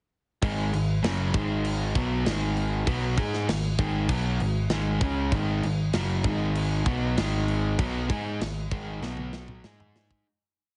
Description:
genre	hard rock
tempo	98 BPM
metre	4/4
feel	straight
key	G# minor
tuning	A4 = 439 Hz
part	cranked stack guitar	riff	0.4-10.3 s	F#2 to G#4	-36 LUFS	equal	overdrive
part	overdriven semi-hollow guitar	riff	0.4-10.3 s	F#2 to G#4	-31 LUFS	equal	none
part	picked electric bass	bass	0.4-10.2 s	F#1 to G#2	-32 LUFS	equal	none
part	tight metal drum kit	drums	0.4-10.2 s	crash cymbal, kick drum, snare drum, toms	-33 LUFS	equal	none
room	light reverb, small room reverb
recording	heavily compressed radio sound, nothing above 10.3 kHz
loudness	-27 LUFS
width	mono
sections	0.4-10.3 riff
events	fade-out 7.8-10.3; drum fill 9.0-10.3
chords	0.4 G#m; 9.0 B5; 9.6 G#5

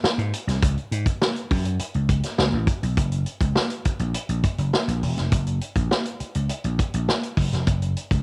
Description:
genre	funk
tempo	102 BPM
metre	4/4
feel	straight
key	unclear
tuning	A4 = 440 Hz
part	vintage slap bass	bass	0.0-8.2 s	E1 to G#2	-23 LUFS	equal	none
part	vintage drum kit	drums	0.0-8.2 s	hi-hat, kick drum, snare drum	-23 LUFS	equal	cassette tape
room	little or no reverb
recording	home recording on cassette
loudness	-21 LUFS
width	side -38 dB against mid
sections	0.0-3.0 A section; 3.0-8.2 B section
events	none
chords	none

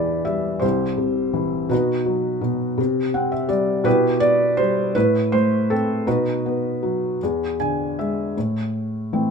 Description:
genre	classical, lyrical solo piano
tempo	51-56 BPM (dotted quarters)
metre	6/8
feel	rubato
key	E minor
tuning	A4 = 439 Hz
part	felt-muted upright piano	solo	0.0-9.3 s	C2 to G#5	-19 LUFS	equal	none
room	light reverb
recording	minimal, uncompressed stereo recording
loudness	-19 LUFS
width	side -5 dB against mid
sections	0.0-8.4 A section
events	felt piano fill 2.8-3.9, 7.2-8.4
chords	0.0 Em; 0.6 C; 1.7 B; 2.8 C5; 3.9 Em/B; 4.9 Am; 6.1 B; 7.2 E7; 8.4 Am

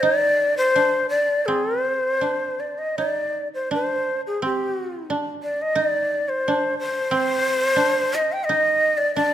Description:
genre	japanese traditional, Japanese chamber music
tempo	80-90 BPM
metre	4/4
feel	rubato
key	C hirajoshi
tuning	A4 = 440 Hz
part	breathy shakuhachi	melody	0.0-9.3 s	G4 to G5	-20 LUFS	left 1 dB	none
part	koto	second line	0.0-9.3 s	C4 to Eb4	-26 LUFS	right 3 dB	none
room	moderate recital hall reverb, RT60 1.8 s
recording	minimal, uncompressed stereo recording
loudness	-19 LUFS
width	side -11 dB against mid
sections	0.0-9.3 A section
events	none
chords	none

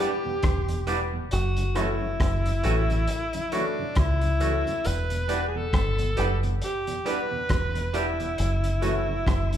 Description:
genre	lovers rock reggae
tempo	68 BPM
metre	4/4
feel	swing 58% on 16ths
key	E dorian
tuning	A4 = 440 Hz
part	bright alto saxophone	melody	0.0-9.6 s	D4 to B4	-29 LUFS	left 1 dB	none
part	FM electric piano with soft pad layer	accompaniment	0.0-9.6 s	F#4 to F#5	-34 LUFS	left 2 dB	chorus, tremolo
part	mellow tonewheel organ	accompaniment	0.0-9.6 s	E2 to E4	-36 LUFS	right 2 dB	slow rotary speaker
part	twangy electric guitar	stabs	0.0-8.9 s	E3 to G4	-32 LUFS	right 3 dB	none
part	deep dub fingered electric bass	bass	0.4-9.6 s	E1 to C#2	-26 LUFS	equal	none
part	crunchy breakbeat drum kit	drums	0.4-9.6 s	hi-hat, kick drum, rim click	-29 LUFS	equal	none
room	moderate large studio reverb, RT60 1.4 s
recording	band playing live in one room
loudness	-23 LUFS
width	side -10 dB against mid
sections	0.0-9.6 A section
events	none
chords	0.0 Em7; 1.3 F#m7; 4.8 Em7; 8.4 F#m7

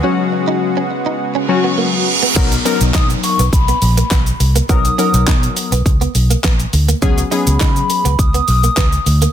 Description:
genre	dance-pop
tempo	103 BPM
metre	4/4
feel	straight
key	unclear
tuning	A4 = 439 Hz
part	warm analog keys	accompaniment	0.0-8.1 s	F#3 to A#4	-18 LUFS	left 5 dB	chorus, sidechain pumping
part	lush unison pad	sustained chords	0.0-2.3 s	C#3 to F#4	-21 LUFS	right 1 dB	chorus, sidechain pumping
part	direct-recorded clean electric guitar	riff	0.0-9.3 s	A#3 to D#4	-23 LUFS	right 7 dB	ensemble chorus
part	reverse cymbal and downlifter	sound effects	1.4-7.0 s	none	-20 LUFS	right 5 dB	none
part	vintage muted fingered electric bass	bass	2.4-9.3 s	A#1 to C#3	-15 LUFS	equal	sidechain pumping
part	pop drum kit	drums	2.4-9.3 s	crash cymbal, handclaps, hi-hat, kick drum, shaker, snare drum	-16 LUFS	equal	none
part	hollow clarinet-like synth lead	melody	2.9-9.3 s	B5 to D#6	-20 LUFS	left 1 dB	chorus, digital delay
room	little or no reverb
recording	dense, heavily limited modern master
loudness	-12 LUFS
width	side -10 dB against mid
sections	0.0-2.4 A section; 2.4-9.3 B section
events	break 0.0-2.4; reverse cymbal 1.4-2.4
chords	0.0 C#7sus4; 2.4 Bmaj7; 7.0 C#7sus4

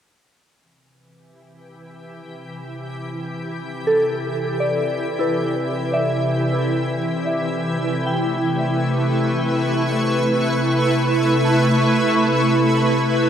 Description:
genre	ambient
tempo	free time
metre	none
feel	none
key	unclear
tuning	A4 = 440 Hz
part	shimmering ambient pad	sustained chords	1.8-13.3 s	E3 to C#6	-20 LUFS	right 1 dB	chorus, built-in reverb
part	organ-like drone	drone	2.6-13.3 s	C3 to C4	-24 LUFS	left 1 dB	ensemble chorus, built-in reverb
part	soft synth bell	arpeggios	3.9-13.3 s	E4 to B5	-24 LUFS	equal	chorus, phaser, diffuse ambient delay
room	wet huge ambient reverb, RT60 6.9 s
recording	none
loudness	-17 LUFS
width	side -9 dB against mid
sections	0.5-13.3 A section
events	fade-in on ambient pad 0.5-13.3; fade-in on synth drone 0.5-13.3; fade-out on synth bell 0.5-13.3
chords	0.5 Em7; 7.6 A7

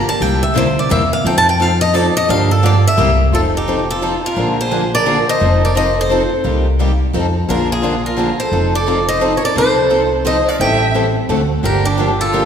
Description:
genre	acoustic string swing (jazz manouche)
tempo	173 BPM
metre	3/4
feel	swing 62% on 8ths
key	F mixolydian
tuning	A4 = 440 Hz
part	picked swing-style acoustic guitar	melody	0.0-12.5 s	G4 to A5	-17 LUFS	left 1 dB	none
part	picked steel-string acoustic guitar	accompaniment	0.2-12.4 s	C3 to A4	-19 LUFS	left 3 dB	none
part	picked steel-string acoustic guitar	accompaniment	0.2-12.4 s	C3 to A4	-22 LUFS	right 3 dB	none
part	upright bass	bass	0.2-12.5 s	F1 to G2	-18 LUFS	equal	none
part	warm violin	second line	3.3-12.5 s	D4 to E5	-22 LUFS	right 3 dB	none
room	wet scoring stage reverb, RT60 1.5 s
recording	recorded in a church or concert hall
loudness	-12 LUFS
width	side -8 dB against mid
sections	0.0-3.3 A section; 3.3-12.5 B section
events	steel-string acoustic guitar solo 0.0-3.3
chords	0.2 C7; 1.3 F7; 2.3 Gm7; 3.0 C7; 3.3 F7; 4.4 Bb7; 5.4 F7; 6.5 Cm7; 7.1 F7; 7.5 Bb7; 8.5 F7; 10.6 Am7; 11.3 D7; 11.6 Gm7

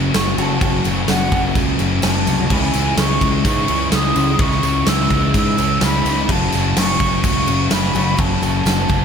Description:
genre	rock, shoegaze and dream pop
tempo	127 BPM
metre	4/4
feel	straight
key	unclear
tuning	A4 = 438 Hz
part	picked twelve-string acoustic guitar	arpeggios	0.0-9.0 s	E3 to F#4	-28 LUFS	right 1 dB	none
part	overdriven semi-hollow guitar	riff	0.0-9.0 s	F#2 to F#4	-26 LUFS	right 12 dB	reverse reverb
part	sludgy distorted guitar	riff	0.0-9.0 s	F#2 to C#4	-24 LUFS	equal	overdrive
part	thick fuzz guitar	riff	0.0-9.0 s	F#2 to C#4	-23 LUFS	left 12 dB	distortion, lush chorus
part	growling fingered electric bass	bass	0.0-9.0 s	F#1 to G#2	-22 LUFS	equal	overdrive
part	huge arena drum kit	drums	0.1-9.0 s	crash cymbal, kick drum, snare drum	-19 LUFS	equal	none
part	tambourine	percussion	0.1-9.0 s	none	-33 LUFS	right 7 dB	none
part	breathy concert flute	melody	0.2-9.0 s	F#5 to E6	-22 LUFS	right 2 dB	digital delay
room	light reverb, small room ambience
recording	none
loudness	-14 LUFS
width	side -7 dB against mid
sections	0.0-9.0 A section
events	none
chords	0.0 F#m; 2.5 C#m; 6.3 F#m

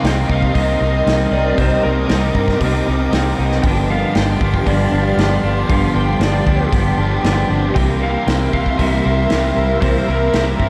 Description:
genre	rock, shoegaze and dream pop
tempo	116 BPM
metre	4/4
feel	straight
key	unclear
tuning	A4 = 442 Hz
part	lead guitar through a small cranked amp	melody	0.0-10.7 s	Bb4 to G5	-26 LUFS	equal	overdrive, diffuse ambient delay
part	soft additive organ-like pad	sustained chords	0.0-10.7 s	G4 to D6	-26 LUFS	equal	ensemble chorus, built-in reverb
part	semi-hollow electric guitar	arpeggios	0.0-10.7 s	E3 to G4	-31 LUFS	equal	none
part	overdriven electric guitar	riff	0.0-10.7 s	G2 to E4	-24 LUFS	equal	reverse reverb
part	thick fuzz guitar	riff	0.0-10.7 s	G2 to C4	-25 LUFS	equal	distortion, analog chorus
part	vintage muted fingered electric bass	bass	0.0-10.7 s	G1 to G2	-22 LUFS	equal	none
part	loose indie drum kit	drums	0.0-10.7 s	hi-hat, kick drum, snare drum	-23 LUFS	equal	none
room	wet lush hall reverb, RT60 1.9 s, small room ambience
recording	dreamy mix soaked in reverb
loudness	-16 LUFS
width	mono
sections	0.0-10.7 A section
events	none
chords	0.0 Cm7; 3.6 G7sus4; 7.8 C7

